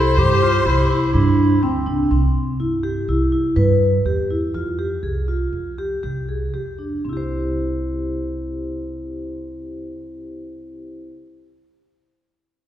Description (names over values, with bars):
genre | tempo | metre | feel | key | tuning
contemporary instrumental, chamber music in an uneven meter | 116-124 BPM | 5/4 | straight | C major | A4 = 440 Hz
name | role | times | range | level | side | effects
rich violin | melody | 0.0-1.6 s | C5 | -21 LUFS | left 4 dB | none
clear clarinet | second line | 0.0-2.1 s | C4 to G4 | -23 LUFS | equal | none
vibraphone with medium hard mallets | arpeggios | 0.0-11.2 s | C4 to C5 | -22 LUFS | left 1 dB | none
upright bass | bass | 0.0-11.1 s | C2 to G2 | -21 LUFS | right 2 dB | none
room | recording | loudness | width
wet scoring stage reverb, RT60 2.0 s | heard from further back in the room | -18 LUFS | side -11 dB against mid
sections
0.0-2.1 A section; 2.1-7.0 B section; 7.0-9.6 C section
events
slowing down 3.1-7.0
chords
0.0 C; 2.1 Cmaj7; 4.5 Fmadd9; 7.0 C